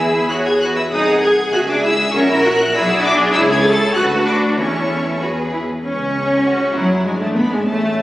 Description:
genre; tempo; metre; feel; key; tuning
quick classical-period movement for string orchestra; 98 BPM; 2/4; straight; unclear; A4 = 439 Hz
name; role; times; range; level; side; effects
clear symphonic violin section; melody; 0.0-8.0 s; F#5 to A6; -23 LUFS; left 1 dB; none
rich symphonic violin section; second line; 0.0-8.0 s; C#4 to G#5; -23 LUFS; left 1 dB; none
rich symphonic viola section; accompaniment; 0.0-8.0 s; F#3 to A4; -18 LUFS; equal; none
clear symphonic cello section; bass; 0.0-8.0 s; F#3 to A#4; -19 LUFS; equal; none
rich symphonic double bass section; bass; 0.0-8.0 s; F#1 to E2; -24 LUFS; equal; none
room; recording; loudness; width
wet scoring stage reverb, RT60 1.6 s; recorded on a phone in the room, club reverb, compression; -14 LUFS; side -16 dB against mid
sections
0.0-5.8 A section; 5.8-8.0 B section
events
none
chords
0.0 E; 0.9 G#7/B#; 1.5 C#m; 2.1 F#7/A#; 2.8 Bm; 3.4 A/C#; 4.0 Bm7/D; 4.6 A/E; 5.2 E; 5.8 F#5; 7.1 G#dim

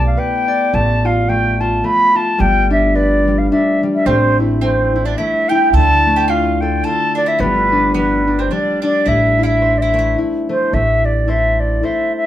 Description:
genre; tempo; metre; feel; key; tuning
celtic folk, Celtic waltz; 108 BPM; 3/4; swing 57% on 8ths; A minor; A4 = 440 Hz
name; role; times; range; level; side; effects
mellow wooden flute; melody; 0.0-12.3 s; B4 to B5; -16 LUFS; equal; none
concert harp; accompaniment; 0.0-12.3 s; D3 to D5; -18 LUFS; left 1 dB; none
upright bass; bass; 0.0-11.8 s; G1 to D2; -18 LUFS; right 1 dB; none
mandolin; second line; 4.1-10.2 s; B3 to A4; -24 LUFS; right 5 dB; none
room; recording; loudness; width
wet small room reverb, RT60 0.5 s; heard from further back in the room; -12 LUFS; side -12 dB against mid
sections
0.0-10.7 A section; 10.7-12.3 B section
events
none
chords
0.0 Gadd9/B; 0.7 G9/A; 2.4 G; 4.1 Am; 5.7 Dm; 7.4 G; 9.1 Am

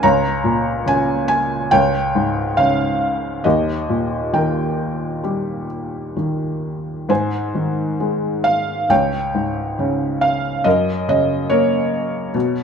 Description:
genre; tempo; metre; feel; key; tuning
classical, lyrical solo piano; 64-73 BPM; 4/4; rubato; unclear; A4 = 440 Hz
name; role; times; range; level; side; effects
felt-muted upright piano; solo; 0.0-12.6 s; Db2 to Bb5; -17 LUFS; equal; none
room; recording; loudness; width
moderate recital hall reverb, RT60 1.3 s; none; -17 LUFS; side -6 dB against mid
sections
0.0-12.6 A section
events
none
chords
0.0 Bbm/Db; 1.7 Db; 3.5 Eb; 7.1 Ab; 8.9 Db5; 10.7 Gb

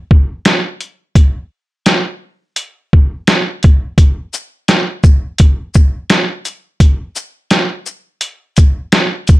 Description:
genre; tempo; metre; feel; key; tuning
hip hop; 85 BPM; 4/4; swing 61% on 16ths; none; none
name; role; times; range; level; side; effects
trip hop sampler-style drum kit; drums; 0.1-9.4 s; hi-hat, kick drum, shaker, snare drum; -9 LUFS; equal; none
room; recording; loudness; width
light reverb; none; -11 LUFS; side -19 dB against mid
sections
0.0-9.4 A section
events
none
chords
none

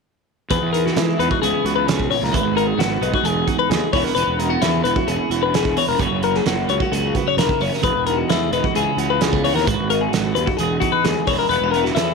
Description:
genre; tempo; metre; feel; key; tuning
math rock and midwest emo; 131 BPM; 4/4; straight; unclear; A4 = 445 Hz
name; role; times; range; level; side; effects
twelve-string electric guitar; accompaniment; 0.5-12.1 s; E2 to G#4; -23 LUFS; right 16 dB; wide subtle chorus
twelve-string electric guitar; arpeggios; 0.5-12.1 s; E4 to C#5; -20 LUFS; left 15 dB; none
fuzz fingered electric bass; bass; 0.5-12.1 s; E1 to E3; -24 LUFS; equal; overdrive
loose indie drum kit; drums; 0.5-12.1 s; hi-hat, kick drum, snare drum; -24 LUFS; right 4 dB; none
room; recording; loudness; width
light reverb; 1960s-style stereo with parts hard left and right; -16 LUFS; side -4 dB against mid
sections
0.5-12.1 A section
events
none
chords
0.5 Emaj7; 1.4 C#m7; 2.3 G#m7; 3.2 Emaj7; 3.9 C#m7/E; 7.8 Emaj7; 8.7 C#m7; 9.7 G#m9; 10.6 Emaj7; 11.3 C#m7/E

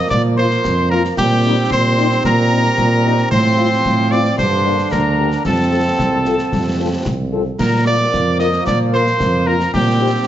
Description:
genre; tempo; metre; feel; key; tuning
military-style march for wind band; 112 BPM; 2/4; straight; Bb major; A4 = 440 Hz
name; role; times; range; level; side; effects
clear cornet; melody; 0.0-10.2 s; G4 to Eb5; -20 LUFS; right 1 dB; none
mellow piccolo; second line; 0.0-10.2 s; G5 to Eb6; -22 LUFS; left 4 dB; none
clear trombone section; sustained chords; 0.0-10.3 s; D3 to D4; -22 LUFS; right 2 dB; none
mellow tuba; bass; 0.1-10.2 s; C2 to Bb2; -17 LUFS; right 2 dB; none
concert snare drum, concert bass drum and clash cymbals; drums; 0.1-10.3 s; none; -24 LUFS; left 1 dB; none
mellow French horn section; accompaniment; 0.4-10.1 s; F3 to Bb4; -23 LUFS; left 5 dB; none
room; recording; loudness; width
moderate large studio reverb, RT60 1.2 s; heavily compressed radio sound, nothing above 7.7 kHz; -13 LUFS; side -11 dB against mid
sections
0.0-10.3 A section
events
none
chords
0.0 Bb5; 1.2 Cm7/Bb; 3.3 F/A; 4.4 Gm; 5.5 F; 7.6 Bb; 9.7 Cm7/Bb

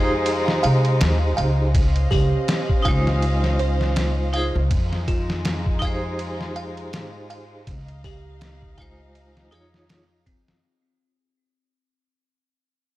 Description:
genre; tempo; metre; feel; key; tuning
trip hop; 81 BPM; 4/4; swing 57% on 16ths; unclear; A4 = 440 Hz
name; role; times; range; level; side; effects
vibraphone with hard mallets; accompaniment; 0.0-10.1 s; Ab3 to Db5; -26 LUFS; right 1 dB; tremolo, tape echo
dark studio violin section; sustained chords; 0.0-10.6 s; Ab3 to F5; -30 LUFS; left 2 dB; none
music box; arpeggios; 0.0-10.6 s; C4 to F5; -30 LUFS; right 5 dB; tape echo
upright bass; bass; 0.0-10.6 s; Db2 to C3; -22 LUFS; equal; none
trip hop sampler-style drum kit; drums; 0.3-10.6 s; hi-hat, kick drum, ride cymbal, snare drum; -24 LUFS; equal; none
room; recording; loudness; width
small room ambience; dark, warm production; -18 LUFS; side -16 dB against mid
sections
0.0-10.6 A section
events
fade-out 0.0-10.6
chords
0.0 Dbmaj9; 4.7 Fm9; 7.7 Dbmaj9

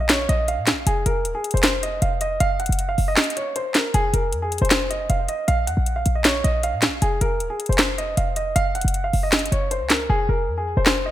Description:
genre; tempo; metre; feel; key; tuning
hip hop, trap; 156 BPM; 4/4; half-time; unclear; A4 = 440 Hz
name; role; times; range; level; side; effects
dark baby grand piano; melody; 0.0-11.1 s; Ab4 to Gb5; -24 LUFS; right 1 dB; none
short 808-style bass; bass; 0.0-11.1 s; Eb1 to Bb2; -23 LUFS; equal; none
trap drum kit; drums; 0.1-11.0 s; handclaps, hi-hat, snare drum; -21 LUFS; equal; none
room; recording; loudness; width
light reverb, digital ambience; bright 1980s-style digital production; -19 LUFS; side -13 dB against mid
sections
0.0-11.1 A section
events
kick muted 3.2-3.9; hi-hats muted 10.1-11.1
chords
0.0 Bb5; 0.9 Ebsus24; 2.4 Ebmadd9/F; 5.5 Bb5; 7.0 Ebsus24; 8.6 Gb5; 10.1 Fm

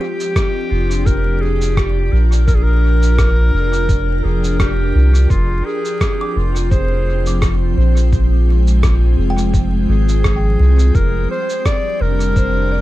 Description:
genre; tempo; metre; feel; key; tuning
ambient dub; 85 BPM; 4/4; swing 55% on 16ths; unclear; A4 = 440 Hz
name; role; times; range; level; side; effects
bright clarinet; melody; 0.0-12.8 s; F4 to D5; -22 LUFS; equal; tape echo
soft additive organ-like pad; sustained chords; 0.0-12.8 s; F3 to G5; -23 LUFS; left 1 dB; ensemble chorus, built-in reverb
kalimba; arpeggios; 0.0-1.7, 6.2-11.0 s; G4 to D6; -32 LUFS; right 2 dB; tape echo
electronic shaker and rim click; drums; 0.2-12.5 s; none; -27 LUFS; equal; dub echo
electronic kick drum; drums; 0.4-12.5 s; none; -17 LUFS; equal; none
soft dub sub bass; bass; 0.7-12.8 s; F1 to C2; -14 LUFS; equal; none
room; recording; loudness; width
little or no reverb; dark, warm production, vinyl crackle; -13 LUFS; side -16 dB against mid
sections
0.0-12.8 A section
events
none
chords
0.0 Gm7/F; 5.3 Fm; 10.9 Gm7/F

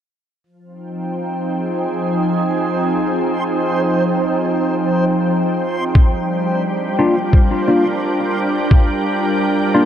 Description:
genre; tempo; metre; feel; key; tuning
ambient dub; 87 BPM; 4/4; swing 56% on 16ths; F dorian; A4 = 441 Hz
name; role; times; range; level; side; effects
soft additive organ-like pad; sustained chords; 0.8-9.9 s; F3 to G5; -17 LUFS; equal; ensemble chorus, built-in reverb
backwards swelling texture; texture; 2.5-9.9 s; C5; -26 LUFS; right 2 dB; built-in reverb
electronic kick drum; drums; 6.0-8.9 s; none; -11 LUFS; equal; none
tine electric piano; stabs; 7.0-9.9 s; Bb3 to F4; -17 LUFS; left 2 dB; overdrive, phaser, dub echo
room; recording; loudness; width
moderate huge ambient reverb, RT60 4.2 s; none; -15 LUFS; side -10 dB against mid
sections
0.4-9.9 A section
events
filter sweep on ambient pad 0.4-9.9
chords
0.4 Fm9; 6.0 Gm7

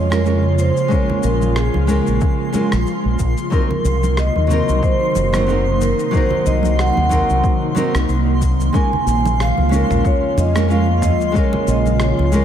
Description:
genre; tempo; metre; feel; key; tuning
sunset chillout; 92 BPM; 4/4; swing 56% on 16ths; Bb minor; A4 = 440 Hz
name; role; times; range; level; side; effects
vibraphone with medium mallets; melody; 0.0-12.4 s; Ab4 to Ab5; -22 LUFS; right 1 dB; diffuse ambient delay
nylon-string guitar; accompaniment; 0.0-12.4 s; Gb3 to Bb4; -22 LUFS; moving between left 4 dB and right 3 dB; auto-pan, diffuse ambient delay
ethereal airy pad; sustained chords; 0.0-12.4 s; C3 to F4; -22 LUFS; right 1 dB; ensemble chorus, built-in reverb
fingered electric bass with an envelope filter; bass; 0.0-12.4 s; Gb1 to F2; -18 LUFS; equal; none
twinkling granular texture; texture; 0.0-12.4 s; C6; -30 LUFS; equal; built-in reverb
dusty soul sampler-style drum kit; drums; 0.1-12.4 s; cabasa, rim click, toms; -28 LUFS; equal; none
electronic kick drum; drums; 0.9-11.5 s; none; -18 LUFS; equal; none
congas; percussion; 1.1-12.4 s; none; -28 LUFS; right 4 dB; none
room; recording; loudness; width
wet plate reverb, RT60 1.7 s; dreamy mix soaked in reverb; -14 LUFS; side -9 dB against mid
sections
0.0-12.4 A section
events
none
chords
0.0 Bbm7; 3.5 Cm7b5; 8.7 Bbm7

